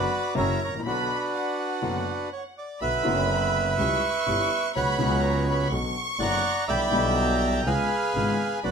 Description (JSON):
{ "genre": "tango", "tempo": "124 BPM", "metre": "4/4", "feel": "rubato", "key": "B harmonic minor", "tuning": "A4 = 440 Hz", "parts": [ { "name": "bandoneon", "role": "melody", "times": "0.0-8.7 s", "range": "D4 to A#5", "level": "-26 LUFS", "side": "right 2 dB", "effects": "none" }, { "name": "clear chamber violin section", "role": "second line", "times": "0.0-8.7 s", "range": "F#5 to C#6", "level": "-31 LUFS", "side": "equal", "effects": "none" }, { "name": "warm concert grand piano", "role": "accompaniment", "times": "0.0-8.7 s", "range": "F#1 to G4", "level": "-29 LUFS", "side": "left 2 dB", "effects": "none" }, { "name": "clear double bass", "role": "bass", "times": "0.0-8.7 s", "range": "F#1 to C#2", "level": "-29 LUFS", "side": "equal", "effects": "none" } ], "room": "moderate studio reverb, RT60 0.7 s", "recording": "none", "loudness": "-22 LUFS", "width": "side -6 dB against mid", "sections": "0.0-2.8 A section; 2.8-8.7 B section", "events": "break 0.8-2.8", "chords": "0.4 F#7; 0.8 Bm; 3.8 C#dim; 4.7 F#sus4/C#; 5.7 Bm; 6.7 Em7/B; 7.6 C#7" }